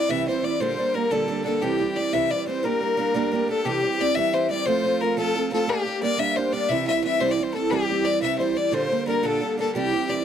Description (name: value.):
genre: celtic folk, Celtic jig.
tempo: 118 BPM (dotted quarters).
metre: 6/8.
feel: straight.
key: G dorian.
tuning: A4 = 441 Hz.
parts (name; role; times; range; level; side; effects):
clear fiddle; melody; 0.0-10.2 s; G4 to E5; -25 LUFS; left 4 dB; none.
bright baroque flute; second line; 0.0-10.0 s; G4 to E5; -28 LUFS; left 6 dB; none.
picked steel-string acoustic guitar; accompaniment; 0.0-10.2 s; Bb2 to G4; -25 LUFS; right 7 dB; none.
room: moderate studio reverb, RT60 0.6 s.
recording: dry, close 1970s-style studio recording.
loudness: -21 LUFS.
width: side -9 dB against mid.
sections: 0.0-3.7 A section; 3.7-10.2 A section.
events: none.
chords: 0.0 C; 0.6 Gm/Bb; 1.6 C; 2.6 Gm; 3.7 C; 4.7 F; 5.7 Gm; 6.7 C; 8.7 Gm/Bb.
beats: 0.10 | 0.61 1.11 | 1.62 2.13 | 2.64 3.15 | 3.66 4.16 | 4.67 5.18 | 5.69 6.20 | 6.70 7.21 | 7.72 8.23 | 8.73 9.24 | 9.75.